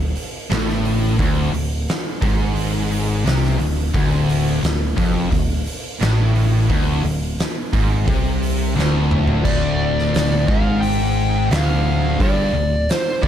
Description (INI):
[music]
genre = stoner and doom metal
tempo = 87 BPM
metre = 4/4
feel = straight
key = D minor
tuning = A4 = 441 Hz
[part]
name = fuzz guitar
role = riff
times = 0.0-13.3 s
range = D2 to C3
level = -24 LUFS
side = right 8 dB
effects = distortion
[part]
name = heavy high-gain guitar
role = riff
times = 0.0-13.3 s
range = D2 to C3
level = -26 LUFS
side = equal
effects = distortion
[part]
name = thick fuzz guitar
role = riff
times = 0.0-13.3 s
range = D2 to C3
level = -22 LUFS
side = left 6 dB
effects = distortion
[part]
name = overdriven fingered electric bass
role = bass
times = 0.0-13.3 s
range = D1 to C2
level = -22 LUFS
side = equal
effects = none
[part]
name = oversized low-tuned drum kit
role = drums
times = 0.2-13.3 s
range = crash cymbal, hi-hat, kick drum, snare drum, toms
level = -22 LUFS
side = equal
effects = none
[part]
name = fuzz lead guitar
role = melody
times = 9.4-13.3 s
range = C5 to G5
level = -22 LUFS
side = left 1 dB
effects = wah, distortion, ping-pong delay
[sound]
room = little or no reverb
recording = dark, warm production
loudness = -16 LUFS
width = side -10 dB against mid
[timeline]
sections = 0.0-9.5 A section; 9.5-13.3 B section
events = drum fill 8.8-9.5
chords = 0.0 Dm